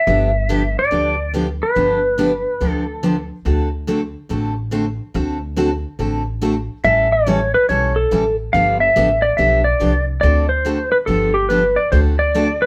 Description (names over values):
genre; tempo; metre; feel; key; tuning
country, western swing; 142 BPM; 4/4; swing 65% on 8ths; unclear; A4 = 440 Hz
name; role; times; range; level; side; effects
clean lap steel guitar; melody; 0.0-3.3, 6.8-12.7 s; G4 to F5; -18 LUFS; equal; none
picked steel-string acoustic guitar; accompaniment; 0.1-12.5 s; D3 to A4; -24 LUFS; equal; none
upright bass; bass; 0.1-12.6 s; G1 to D2; -23 LUFS; equal; none
room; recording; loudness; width
light reverb; band playing live in one room; -18 LUFS; mono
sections
0.0-12.7 A section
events
none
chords
0.1 G7; 3.5 D7; 6.8 A9; 8.5 G9; 10.2 D7; 11.1 G7; 11.9 D7